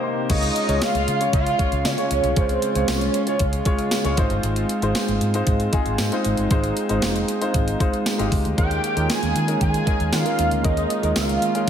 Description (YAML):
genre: 1980s-style pop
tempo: 116 BPM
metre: 4/4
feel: straight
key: unclear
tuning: A4 = 441 Hz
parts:
  - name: warm grand piano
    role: accompaniment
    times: 0.0-11.7 s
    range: Ab3 to C6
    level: -24 LUFS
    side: left 2 dB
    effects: none
  - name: brassy analog pad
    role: sustained chords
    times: 0.0-11.7 s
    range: C3 to Bb4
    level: -29 LUFS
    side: right 2 dB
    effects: chorus, tremolo
  - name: wide unison lead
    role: melody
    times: 0.3-3.7, 8.6-11.7 s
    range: C5 to Ab5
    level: -24 LUFS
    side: right 3 dB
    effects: phaser, slapback echo
  - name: warm studio violin section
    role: second line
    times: 0.3-3.7, 8.6-11.7 s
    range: C4 to Ab4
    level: -32 LUFS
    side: equal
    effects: digital delay
  - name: vintage muted fingered electric bass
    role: bass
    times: 0.3-11.4 s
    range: G1 to Eb3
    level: -25 LUFS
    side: equal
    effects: none
  - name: clean 12-bit digital drum machine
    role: drums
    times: 0.3-11.7 s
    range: crash cymbal, hi-hat, kick drum, snare drum, tambourine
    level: -24 LUFS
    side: equal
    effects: overdrive
  - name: tambourine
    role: percussion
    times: 0.8-11.3 s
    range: none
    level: -38 LUFS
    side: right 5 dB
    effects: none
room: wet scoring stage reverb, RT60 1.5 s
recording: big arena sound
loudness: -19 LUFS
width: side -8 dB against mid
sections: 0.3-11.7 A section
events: break 0.0-0.3; grand piano fill 0.0-0.3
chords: 0.3 Db; 4.2 Ab6; 8.6 Eb7sus4